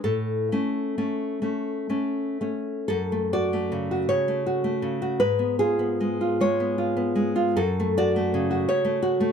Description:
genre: romantic piece for solo classical guitar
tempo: 37-60 BPM (dotted quarters)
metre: 6/8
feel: rubato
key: F# minor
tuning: A4 = 440 Hz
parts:
  - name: nylon-string guitar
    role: solo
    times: 0.0-9.3 s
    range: F#2 to D5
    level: -22 LUFS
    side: equal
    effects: none
room: little or no reverb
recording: dry, close 1970s-style studio recording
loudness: -22 LUFS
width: side -7 dB against mid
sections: 0.0-2.9 A section; 2.9-9.3 B section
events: none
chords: 0.0 A; 2.9 F#m; 5.2 C#7/G#; 7.6 F#m

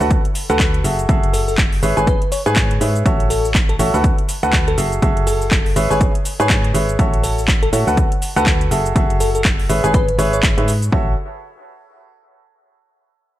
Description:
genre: piano house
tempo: 122 BPM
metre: 4/4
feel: swing 59% on 16ths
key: A major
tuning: A4 = 443 Hz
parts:
  - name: clear upright piano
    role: riff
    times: 0.0-11.1 s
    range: F#4 to G#5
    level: -20 LUFS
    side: right 1 dB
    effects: vintage 12-bit sampler grit, sidechain pumping, dub echo
  - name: solid FM bass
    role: bass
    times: 0.0-11.2 s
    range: F#1 to A2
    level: -20 LUFS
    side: equal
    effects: sidechain pumping
  - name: house drum kit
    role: drums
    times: 0.0-10.9 s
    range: handclaps, hi-hat, shaker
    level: -22 LUFS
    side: equal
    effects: overdrive
  - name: electronic kick drum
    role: drums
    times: 0.1-11.1 s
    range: none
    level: -17 LUFS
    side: equal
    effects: overdrive
  - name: bell-like FM electric piano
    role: melody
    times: 0.5-10.4 s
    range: A4 to C#5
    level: -25 LUFS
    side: left 2 dB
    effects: chorus, dub echo
room: digital ambience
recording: none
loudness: -14 LUFS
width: side -14 dB against mid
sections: 0.0-10.9 A section; 10.9-12.9 B section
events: drop 0.0-10.9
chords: 0.1 D6; 0.8 F#m9; 1.8 C#m7/G#; 3.1 A6; 4.0 D6; 4.8 F#m9; 5.8 C#m7/G#; 7.0 A6; 8.0 D6; 8.7 F#m9; 9.7 C#m7/G#; 10.9 A6

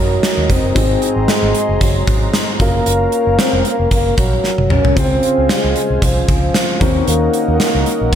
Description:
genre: 1980s-style pop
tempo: 114 BPM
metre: 4/4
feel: swing 55% on 16ths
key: Db major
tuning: A4 = 441 Hz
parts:
  - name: mellow French horn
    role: melody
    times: 0.0-8.2 s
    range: F3 to Db4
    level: -17 LUFS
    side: equal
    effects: digital delay
  - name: warm grand piano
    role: accompaniment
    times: 0.0-8.2 s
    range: Ab2 to C5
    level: -22 LUFS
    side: left 3 dB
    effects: slapback echo
  - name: warm analog pad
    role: sustained chords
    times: 0.0-8.2 s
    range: Ab4 to C6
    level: -25 LUFS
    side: right 1 dB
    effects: chorus
  - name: vintage muted fingered electric bass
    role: bass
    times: 0.0-8.2 s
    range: F1 to Gb2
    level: -18 LUFS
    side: equal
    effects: none
  - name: gated 80s drum kit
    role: drums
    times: 0.2-8.2 s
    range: hi-hat, kick drum, snare drum, toms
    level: -16 LUFS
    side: equal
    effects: none
room: moderate lush hall reverb, RT60 1.9 s, small room ambience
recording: big arena sound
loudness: -12 LUFS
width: side -9 dB against mid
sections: 0.0-8.2 A section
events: drum fill 4.4-5.0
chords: 0.0 Ebm7; 0.8 Ab7; 2.6 Gbmaj7; 5.0 Dbmaj7; 6.8 Ebm7

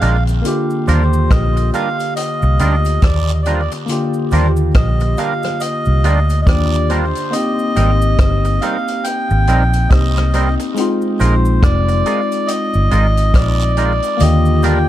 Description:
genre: lovers rock reggae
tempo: 70 BPM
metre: 4/4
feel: swing 60% on 16ths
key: Eb major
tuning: A4 = 440 Hz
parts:
  - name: melodica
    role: melody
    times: 0.0-14.9 s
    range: C5 to G5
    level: -21 LUFS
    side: right 1 dB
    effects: tape echo
  - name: barky tine electric piano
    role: accompaniment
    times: 0.0-14.9 s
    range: D3 to Ab4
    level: -20 LUFS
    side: left 3 dB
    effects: phaser, tape echo
  - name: twangy electric guitar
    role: stabs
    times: 0.0-14.8 s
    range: G3 to Bb4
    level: -23 LUFS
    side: right 4 dB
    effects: analog chorus
  - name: vintage muted fingered electric bass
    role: bass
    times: 0.0-14.9 s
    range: F1 to Eb2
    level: -14 LUFS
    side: equal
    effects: none
  - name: vintage drum kit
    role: drums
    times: 0.0-14.9 s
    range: hi-hat, kick drum, rim click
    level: -17 LUFS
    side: equal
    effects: none
  - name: cabasa and guiro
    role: percussion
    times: 0.0-14.9 s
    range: none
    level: -36 LUFS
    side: right 5 dB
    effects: tape echo
room: small room ambience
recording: dark, warm production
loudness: -13 LUFS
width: side -13 dB against mid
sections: 0.0-14.2 A section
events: none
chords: 0.4 Ebmaj9; 7.3 Abmaj9; 10.8 Bb7sus4; 14.2 Ebmaj9

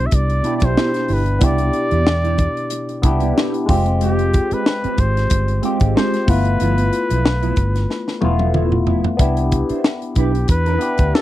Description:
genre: lush 1970s-style soul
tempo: 93 BPM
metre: 4/4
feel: swing 54% on 16ths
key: C major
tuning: A4 = 440 Hz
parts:
  - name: breathy flugelhorn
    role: melody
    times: 0.0-11.2 s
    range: G4 to E5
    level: -23 LUFS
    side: equal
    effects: none
  - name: barky tine electric piano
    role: accompaniment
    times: 0.0-11.2 s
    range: B2 to G4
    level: -22 LUFS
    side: left 3 dB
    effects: phaser
  - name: vintage muted fingered electric bass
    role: bass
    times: 0.0-11.1 s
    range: E1 to E2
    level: -18 LUFS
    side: equal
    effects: none
  - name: mellow electric guitar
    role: riff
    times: 0.1-11.2 s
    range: F3 to C5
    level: -24 LUFS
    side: right 5 dB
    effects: ensemble chorus
  - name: tight funk drum kit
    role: drums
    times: 0.1-11.2 s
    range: hi-hat, kick drum, snare drum, toms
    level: -18 LUFS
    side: equal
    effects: none
room: little or no reverb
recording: dry, close 1970s-style studio recording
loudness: -15 LUFS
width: side -14 dB against mid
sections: 0.0-9.2 A section; 9.2-11.2 B section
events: drum fill 7.9-9.2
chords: 0.0 Cmaj7; 3.7 Fmadd9; 6.3 G13; 9.2 Cmaj9

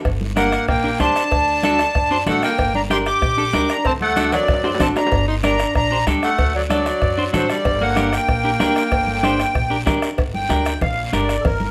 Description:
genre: latin, cumbia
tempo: 190 BPM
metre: 4/4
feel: straight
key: G harmonic minor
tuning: A4 = 440 Hz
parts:
  - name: upright bass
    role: bass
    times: 0.1-11.7 s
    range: G1 to F#2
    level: -28 LUFS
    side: equal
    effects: none
  - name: bombo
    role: percussion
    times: 0.1-11.6 s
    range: none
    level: -27 LUFS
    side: equal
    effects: none
  - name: cowbell and timbales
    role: percussion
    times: 0.1-11.6 s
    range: none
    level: -32 LUFS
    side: equal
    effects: none
  - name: guiro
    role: percussion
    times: 0.1-11.7 s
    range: none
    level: -36 LUFS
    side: equal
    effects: none
  - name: congas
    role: percussion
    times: 0.2-11.7 s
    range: none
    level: -30 LUFS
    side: equal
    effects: none
  - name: accordion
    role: melody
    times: 0.4-11.7 s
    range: A4 to D6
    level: -23 LUFS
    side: equal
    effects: light tremolo tuning
  - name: clear tenor saxophone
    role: second line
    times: 0.4-9.8 s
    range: F#3 to G4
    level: -26 LUFS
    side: equal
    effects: none
  - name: clean electric guitar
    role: accompaniment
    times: 0.4-11.4 s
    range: D4 to C5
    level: -25 LUFS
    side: equal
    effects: none
room: moderate large studio reverb, RT60 1.1 s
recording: none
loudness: -18 LUFS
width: mono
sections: 0.0-10.2 A section; 10.2-11.7 B section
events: drum fill 4.3-5.1; accordion solo 10.2-11.7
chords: 0.0 Gm; 1.3 D; 2.6 Gm; 3.9 D; 5.1 Gm; 6.4 D; 7.7 Gm

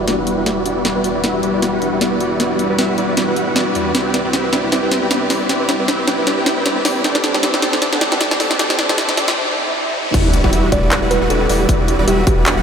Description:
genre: future bass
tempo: 155 BPM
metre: 4/4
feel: swing 55% on 16ths, half-time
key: E minor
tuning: A4 = 435 Hz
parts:
  - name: shimmering ambient pad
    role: sustained chords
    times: 0.0-12.6 s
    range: C3 to G4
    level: -25 LUFS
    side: left 1 dB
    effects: chorus, built-in reverb, sidechain pumping
  - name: dense compressed supersaw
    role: riff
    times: 0.0-12.6 s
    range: G3 to G5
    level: -18 LUFS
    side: equal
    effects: sidechain pumping, low-pass filter, tape echo
  - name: saturated sub bass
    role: bass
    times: 0.0-12.6 s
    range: D1 to E2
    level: -26 LUFS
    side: equal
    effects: sidechain pumping
  - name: thumb-piano-like synth pluck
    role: arpeggios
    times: 0.1-12.6 s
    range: D4 to D5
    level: -25 LUFS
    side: right 2 dB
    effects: chorus, sidechain pumping, tape echo
  - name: trap drum kit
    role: drums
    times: 0.1-12.5 s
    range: crash cymbal, handclaps, hi-hat, snare drum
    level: -19 LUFS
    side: equal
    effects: none
  - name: riser, swell and sub drop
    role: sound effects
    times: 7.9-11.7 s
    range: none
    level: -28 LUFS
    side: equal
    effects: none
  - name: electronic kick drum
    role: drums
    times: 10.1-12.4 s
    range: none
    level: -17 LUFS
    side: equal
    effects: none
  - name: kalimba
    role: melody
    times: 10.7-12.4 s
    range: G4 to D5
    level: -20 LUFS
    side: right 2 dB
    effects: sidechain pumping, analog delay
room: wet huge ambient reverb, RT60 9.1 s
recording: dreamy mix soaked in reverb, high-pass filter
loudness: -14 LUFS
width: side -7 dB against mid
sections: 0.0-10.1 A section; 10.1-12.6 B section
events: build-up 0.0-10.1; drum fill 0.0-9.4; filter sweep on supersaw synth 0.0-10.1; filter sweep on synth arpeggio sound 0.0-10.1; filter sweep on ambient pad 0.0-10.1; filter sweep 0.0-10.1; break 9.4-10.1; swell 9.4-10.1; drop 10.1-12.6; impact 10.1-11.7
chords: 0.0 Em9; 3.9 Cmaj9; 7.0 D7sus4; 10.1 Em9

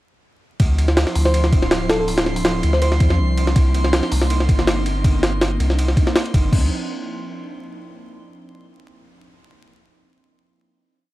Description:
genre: drum and bass, jungle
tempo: 162 BPM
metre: 4/4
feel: swing 53% on 16ths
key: unclear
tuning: A4 = 440 Hz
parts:
  - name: airy breathy pad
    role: sustained chords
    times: 0.6-6.7 s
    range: F3 to E4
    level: -27 LUFS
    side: right 1 dB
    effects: chorus
  - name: soft dub sub bass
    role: bass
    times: 0.6-6.7 s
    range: D1 to E2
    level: -19 LUFS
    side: equal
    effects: tube saturation
  - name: jungle sampler-style drum kit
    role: drums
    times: 0.6-6.6 s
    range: crash cymbal, hi-hat, kick drum, ride cymbal, snare drum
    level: -18 LUFS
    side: equal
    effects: none
  - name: drifting glass-harmonics texture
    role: texture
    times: 0.9-6.5 s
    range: C6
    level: -32 LUFS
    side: right 3 dB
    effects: chorus, built-in reverb
  - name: bell-like FM electric piano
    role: melody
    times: 1.3-2.9 s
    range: A4 to C5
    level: -25 LUFS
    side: equal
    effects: chorus, dub echo
room: digital ambience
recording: dry, gritty hardware recording, vinyl crackle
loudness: -15 LUFS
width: side -17 dB against mid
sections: 0.6-6.5 drop; 6.5-8.0 final chord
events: drop 0.6-6.5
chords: 0.6 Dm9; 3.6 Cm9; 6.5 Dm9

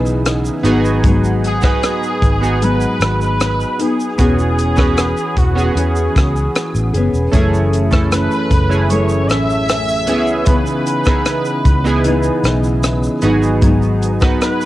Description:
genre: indie pop, bedroom pop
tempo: 76 BPM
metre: 4/4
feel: straight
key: unclear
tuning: A4 = 440 Hz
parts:
  - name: clear trumpet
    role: melody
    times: 0.0-14.7 s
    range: F#4 to E5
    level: -21 LUFS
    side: equal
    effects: ensemble chorus, cassette tape, analog delay
  - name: chorused retro synth keys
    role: accompaniment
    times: 0.0-14.7 s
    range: A3 to B4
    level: -20 LUFS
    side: right 3 dB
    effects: cassette tape
  - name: fingerpicked steel-string acoustic guitar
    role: accompaniment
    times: 0.0-14.7 s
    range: F#2 to G#4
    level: -19 LUFS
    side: left 2 dB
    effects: analog chorus, warbly pitch drift
  - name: vintage muted fingered electric bass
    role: bass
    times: 0.0-14.3 s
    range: E1 to E2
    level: -18 LUFS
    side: equal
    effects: none
  - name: compact cocktail drum kit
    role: drums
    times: 0.1-14.7 s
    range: hi-hat, kick drum, rim click, shaker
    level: -17 LUFS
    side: equal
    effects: vintage 12-bit sampler grit
room: light reverb, small room ambience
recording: home recording on cassette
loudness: -12 LUFS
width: side -15 dB against mid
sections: 0.0-14.7 A section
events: none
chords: 0.0 C#m9; 0.6 G#m7; 4.2 E6; 7.3 F#m7; 10.1 C#m9; 13.2 G#m7

